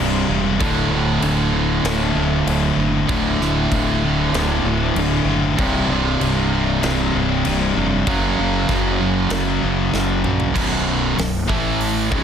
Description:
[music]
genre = heavy metal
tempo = 96 BPM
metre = 4/4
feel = straight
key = unclear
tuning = A4 = 438 Hz
[part]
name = crunchy overdriven guitar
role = riff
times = 0.0-12.2 s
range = B1 to A3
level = -24 LUFS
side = equal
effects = none
[part]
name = distorted electric guitar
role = riff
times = 0.0-12.2 s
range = B1 to A3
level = -22 LUFS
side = right 8 dB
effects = overdrive
[part]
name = high-gain distorted guitar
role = riff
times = 0.0-12.2 s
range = B1 to A3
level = -22 LUFS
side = left 8 dB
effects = distortion
[part]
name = fuzz fingered electric bass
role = bass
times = 0.0-12.2 s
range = B0 to A#1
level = -23 LUFS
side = equal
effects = overdrive
[part]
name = big rock drum kit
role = drums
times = 0.6-12.2 s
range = crash cymbal, hi-hat, kick drum, snare drum, toms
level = -26 LUFS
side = equal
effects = none
[sound]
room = small room ambience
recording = dense, heavily limited modern master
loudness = -16 LUFS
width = side -8 dB against mid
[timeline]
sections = 0.0-10.6 A section; 10.6-12.2 B section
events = half time 0.0-10.6; drum fill 9.9-10.6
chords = 0.0 C; 0.6 D; 5.6 C5; 8.1 F#; 10.6 B5; 11.5 A5

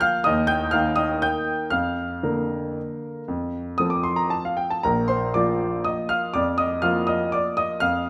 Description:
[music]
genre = classical, piano waltz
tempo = 113-131 BPM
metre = 3/4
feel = rubato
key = Bb major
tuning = A4 = 440 Hz
[part]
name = clear grand piano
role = solo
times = 0.0-8.1 s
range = Bb1 to G6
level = -24 LUFS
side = equal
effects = none
[sound]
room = moderate recital hall reverb, RT60 1.5 s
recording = none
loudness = -24 LUFS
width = mono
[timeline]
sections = 0.0-8.1 A section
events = none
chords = 0.3 Eb; 1.7 Bb/F; 3.3 F; 4.8 Bb

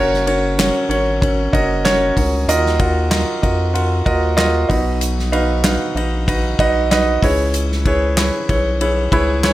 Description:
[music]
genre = piano-driven pop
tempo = 95 BPM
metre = 4/4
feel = swing 56% on 16ths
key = F# major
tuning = A4 = 441 Hz
[part]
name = warm upright piano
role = accompaniment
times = 0.0-9.5 s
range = B2 to B5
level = -17 LUFS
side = right 1 dB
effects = plate reverb
[part]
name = round analog bass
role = bass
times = 0.0-9.5 s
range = F#1 to E#2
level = -20 LUFS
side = equal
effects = none
[part]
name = unplugged drum kit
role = drums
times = 0.1-9.5 s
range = handclaps, hi-hat, kick drum, ride cymbal, snare drum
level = -20 LUFS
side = equal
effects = none
[sound]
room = moderate large studio reverb, RT60 0.8 s, small room ambience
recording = none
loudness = -14 LUFS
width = side -15 dB against mid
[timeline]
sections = 0.0-9.5 A section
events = upright piano fill 8.8-9.5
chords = 0.0 F#; 2.5 D#madd9; 4.7 B; 7.2 C#m7

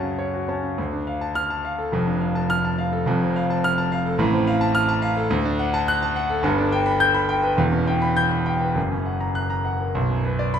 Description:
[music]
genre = classical, virtuoso piano study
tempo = 98-108 BPM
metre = 2/4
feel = rubato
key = D minor, B minor from 5.3 s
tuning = A4 = 441 Hz
[part]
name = clear concert grand piano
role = solo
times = 0.0-10.6 s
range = E1 to G6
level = -20 LUFS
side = equal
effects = none
[sound]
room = wet recital hall reverb, RT60 1.3 s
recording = minimal, uncompressed stereo recording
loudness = -20 LUFS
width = side -8 dB against mid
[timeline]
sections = 0.8-10.0 A section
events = none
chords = 0.0 F#m; 0.8 Dm; 1.9 Dm/F; 3.1 F; 4.2 F/A; 5.3 D; 6.4 G; 7.6 C#m7b5/E; 8.8 F#; 10.0 Bm

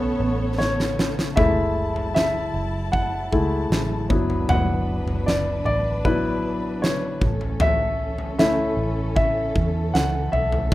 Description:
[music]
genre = pop ballad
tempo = 77 BPM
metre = 4/4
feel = straight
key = A major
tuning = A4 = 440 Hz
[part]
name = clear baby grand piano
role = accompaniment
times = 0.0-10.7 s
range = F#3 to F#5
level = -23 LUFS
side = left 1 dB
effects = none
[part]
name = warm symphonic string section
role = sustained chords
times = 0.0-10.7 s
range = E3 to A5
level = -30 LUFS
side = right 1 dB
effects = none
[part]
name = vintage muted fingered electric bass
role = bass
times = 0.0-10.7 s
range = F#1 to E2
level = -27 LUFS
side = equal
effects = none
[part]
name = huge arena drum kit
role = drums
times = 0.6-10.7 s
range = kick drum, snare drum, toms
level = -24 LUFS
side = equal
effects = none
[sound]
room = light reverb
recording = rough home demo mix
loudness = -20 LUFS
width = side -16 dB against mid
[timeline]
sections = 0.0-1.4 A section; 1.4-10.7 B section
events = grand piano solo 0.0-1.4, 1.4-10.7; drum fill 0.6-1.4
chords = 0.0 Aadd9; 1.4 F#m7; 4.1 D6/F#; 7.2 A

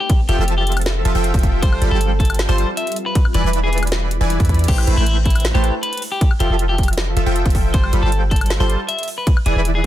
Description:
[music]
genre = future bass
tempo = 157 BPM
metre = 4/4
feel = half-time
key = A minor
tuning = A4 = 440 Hz
[part]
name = electric guitar at the edge of break-up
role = melody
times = 0.0-9.9 s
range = E4 to E5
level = -25 LUFS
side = left 2 dB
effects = sidechain pumping, ping-pong delay
[part]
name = shimmering ambient pad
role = sustained chords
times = 0.0-4.7 s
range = F3 to E5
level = -30 LUFS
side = right 1 dB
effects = chorus, built-in reverb, phaser, sidechain pumping
[part]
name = electronic kick drum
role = drums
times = 0.1-9.9 s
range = none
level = -16 LUFS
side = equal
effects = none
[part]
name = trap drum kit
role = drums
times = 0.1-9.7 s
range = crash cymbal, hi-hat, ride cymbal, snare drum, woodblock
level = -26 LUFS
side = equal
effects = none
[part]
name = supersaw stab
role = riff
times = 0.3-9.9 s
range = E3 to B5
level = -23 LUFS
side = right 1 dB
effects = sidechain pumping, ping-pong delay
[part]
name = warm 808-style bass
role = bass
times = 0.3-9.9 s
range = E1 to E2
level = -18 LUFS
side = equal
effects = sidechain pumping
[sound]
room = digital ambience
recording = dense, heavily limited modern master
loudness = -15 LUFS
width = side -13 dB against mid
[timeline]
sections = 0.0-4.7 A section; 4.7-9.9 A section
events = drop 0.0-4.7, 4.7-9.9; drum fill 4.5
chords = 0.1 Fmaj7; 1.6 G9sus4; 3.2 E7; 4.7 Am7; 6.2 Fmaj7; 7.7 G9sus4; 9.3 E7

